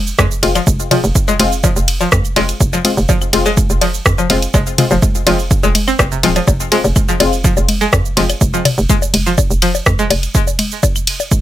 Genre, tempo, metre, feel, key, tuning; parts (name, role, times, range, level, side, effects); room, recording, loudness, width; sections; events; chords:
minimal techno; 124 BPM; 4/4; straight; F minor; A4 = 445 Hz
hollow knocking FM bass; bass; 0.0-10.3 s; Eb1 to F2; -18 LUFS; right 1 dB; sidechain pumping
house drum kit; drums; 0.1-11.4 s; cabasa, hi-hat, ride cymbal, rim click; -17 LUFS; right 1 dB
string-like resonator pluck; riff; 0.2-10.0 s; C3 to C4; -18 LUFS; equal; chorus, sidechain pumping, ping-pong delay
electronic kick drum; drums; 0.2-11.4 s; -16 LUFS; right 1 dB
electronic bongos, claves, congas and toms; percussion; 0.2-11.4 s; -20 LUFS; left 4 dB; ping-pong delay
filtered dub chord stab; stabs; 0.4-8.2 s; Ab3 to F4; -20 LUFS; left 4 dB; chorus, cassette tape, ping-pong delay
light reverb; -11 LUFS; side -13 dB against mid
0.0-11.4 A section
0.0 Fm